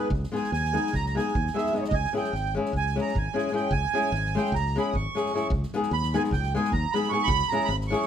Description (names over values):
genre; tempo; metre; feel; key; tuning
balkan folk, Balkan wedding band; 301 BPM (eighths); 9/8; straight; C# dorian sharp4; A4 = 440 Hz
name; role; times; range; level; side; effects
accordion; second line; 0.0-8.1 s; C#5 to D#6; -28 LUFS; right 6 dB; light tremolo tuning
flamenco guitar; accompaniment; 0.0-8.1 s; G#3 to G#4; -27 LUFS; left 4 dB; none
modern bright fingered electric bass; bass; 0.1-7.9 s; G#1 to D#2; -28 LUFS; equal; none
soft-mallet drum kit; percussion; 0.1-8.1 s; kick drum, snare drum; -34 LUFS; right 1 dB; none
room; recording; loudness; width
moderate studio reverb, RT60 0.6 s; none; -24 LUFS; side -9 dB against mid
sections
0.0-8.1 A section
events
accordion solo 0.0-8.1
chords
0.0 G#m/C#; 1.9 C#m; 5.5 G#m/C#; 7.3 C#m